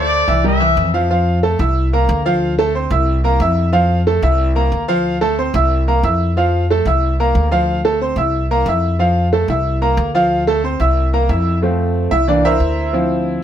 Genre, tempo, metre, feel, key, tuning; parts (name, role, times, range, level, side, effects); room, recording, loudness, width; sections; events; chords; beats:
latin, salsa; 182 BPM; 4/4; straight; F major; A4 = 440 Hz
clear trumpet section; melody; 0.0-0.9 s; D5 to E5; -16 LUFS; left 2 dB; plate reverb
bright grand piano; accompaniment; 0.0-13.4 s; E3 to E6; -16 LUFS; right 1 dB
upright bass; bass; 0.0-13.4 s; C2 to F2; -17 LUFS; equal
light reverb; -13 LUFS; side -10 dB against mid
0.0-1.1 A section; 1.1-11.6 B section; 11.6-13.4 C section
grand piano solo 11.6-13.4
0.4 C7; 1.1 F; 1.8 C7; 2.4 Dm7; 3.1 C7; 3.7 F; 4.4 C7; 5.0 Dm7; 5.7 C7; 6.4 F; 7.0 C7; 7.7 Dm7; 8.3 C7; 9.0 F; 9.7 C7; 10.3 Dm7; 11.0 C7; 11.6 F; 12.3 C7
0.12 0.45 0.78 | 1.10 1.43 1.76 2.09 | 2.42 2.75 3.08 3.41 | 3.73 4.06 4.39 4.72 | 5.05 5.38 5.71 6.04 | 6.36 6.69 7.02 7.35 | 7.68 8.01 8.34 8.66 | 8.99 9.32 9.65 9.98 | 10.31 10.64 10.97 11.29 | 11.62 11.95 12.28 12.61 | 12.94 13.27